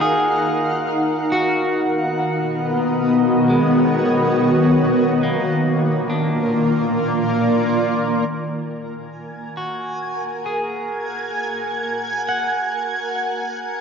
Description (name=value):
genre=ambient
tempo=69 BPM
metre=4/4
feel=straight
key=unclear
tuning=A4 = 440 Hz
part: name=granular cloud pad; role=sustained chords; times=0.0-13.8 s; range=Bb3 to Gb5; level=-19 LUFS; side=equal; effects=built-in reverb, cassette tape
part: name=electric guitar at the edge of break-up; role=arpeggios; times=0.0-13.8 s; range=G#3 to Gb5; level=-25 LUFS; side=equal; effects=cassette tape, analog delay
part: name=organ-like drone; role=drone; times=2.0-8.4 s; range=D#3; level=-23 LUFS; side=equal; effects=ensemble chorus, built-in reverb, cassette tape
part: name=backwards swelling texture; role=texture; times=9.3-13.8 s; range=Ab5 to Ab6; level=-25 LUFS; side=right 2 dB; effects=built-in reverb, cassette tape
room=wet spring reverb, RT60 2.8 s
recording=home recording on cassette, nothing above 7.6 kHz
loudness=-17 LUFS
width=side -6 dB against mid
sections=0.0-8.3 A section; 8.3-13.8 B section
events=fade-out on clean electric guitar 0.0-8.3; fade-in on ambient pad 8.3-13.8; fade-in on clean electric guitar 8.3-13.8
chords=0.0 Ebmadd9; 1.3 B69; 4.8 Bb7; 8.3 Gbadd9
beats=0.46 | 1.33 2.20 3.07 3.94 | 4.81 5.68 6.55 7.42 | 8.29 9.16 10.03 10.90 | 11.77 12.64 13.51